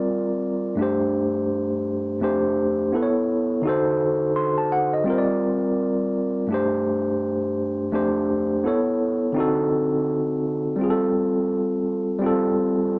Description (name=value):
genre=hip hop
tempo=84 BPM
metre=4/4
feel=swing 60% on 16ths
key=C dorian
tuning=A4 = 440 Hz
part: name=tine electric piano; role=solo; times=0.0-13.0 s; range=F2 to C6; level=-20 LUFS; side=equal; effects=slow stereo tremolo, cassette tape
room=light reverb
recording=home recording on cassette, small speaker sound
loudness=-20 LUFS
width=side -29 dB against mid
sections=0.0-13.0 A section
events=none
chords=0.0 Gm7; 0.8 Csus2/G; 2.2 F69; 2.9 Aadd9; 3.7 D7b9; 5.1 Gm7; 6.5 Csus2/G; 7.9 F69; 8.7 Aadd9; 9.4 D7b9; 10.8 G9sus4